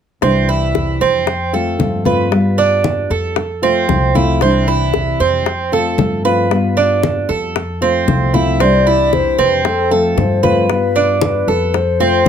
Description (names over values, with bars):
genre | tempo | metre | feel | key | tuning
latin, Cuban son and guajira | 115 BPM | 4/4 | straight | C major | A4 = 440 Hz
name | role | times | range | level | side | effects
nylon-string guitar | accompaniment | 0.2-12.3 s | C3 to F4 | -19 LUFS | left 4 dB | none
Cuban tres | arpeggios | 0.2-12.3 s | C4 to B4 | -16 LUFS | right 6 dB | none
upright bass | bass | 0.2-12.3 s | C2 to G2 | -20 LUFS | equal | none
bongos | percussion | 0.2-12.3 s | none | -21 LUFS | left 11 dB | none
congas | percussion | 0.2-12.3 s | none | -22 LUFS | left 2 dB | none
mellow hollow concert flute | second line | 8.6-12.3 s | A4 to D5 | -17 LUFS | left 6 dB | none
room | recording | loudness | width
moderate studio ambience, RT60 0.5 s | none | -12 LUFS | side -8 dB against mid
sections
0.2-12.3 A section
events
none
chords
0.2 Cadd9; 1.3 F; 2.3 G7; 3.4 F; 4.4 Cadd9; 5.5 F; 6.5 G7; 7.6 F; 8.6 Cadd9; 9.6 F; 10.7 G7; 11.7 F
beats
| 0.22 0.75 1.27 1.79 | 2.32 2.84 3.37 3.89 | 4.41 4.94 5.46 5.99 | 6.51 7.03 7.56 8.08 | 8.60 9.13 9.65 10.17 | 10.69 11.22 11.74 12.26